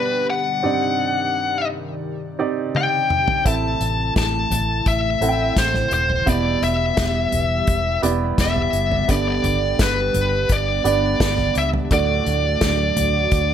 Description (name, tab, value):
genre	piano-driven pop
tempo	85 BPM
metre	4/4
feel	straight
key	G major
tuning	A4 = 442 Hz
part	high-gain lead guitar	melody	0.0-13.5 s	B4 to A5	-21 LUFS	left 2 dB	distortion
part	warm grand piano	accompaniment	0.0-13.5 s	G2 to G5	-25 LUFS	right 5 dB	none
part	warm analog pad	sustained chords	0.0-13.5 s	B2 to D5	-29 LUFS	equal	chorus
part	unplugged drum kit	drums	2.7-13.5 s	hi-hat, kick drum, snare drum, toms	-22 LUFS	equal	none
part	vintage muted fingered electric bass	bass	3.5-13.5 s	Eb1 to D2	-24 LUFS	left 1 dB	none
room	light reverb, studio ambience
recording	none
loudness	-17 LUFS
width	side -9 dB against mid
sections	0.0-13.5 A section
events	drum fill 2.8-3.5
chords	0.0 G; 0.6 Cmadd9; 3.5 Am; 6.3 Em; 9.1 G; 11.9 D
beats	| 0.64 1.34 2.04 2.75 | 3.46 4.16 4.86 5.57 | 6.27 6.98 7.68 8.39 | 9.09 9.80 10.50 11.21 | 11.91 12.62 13.32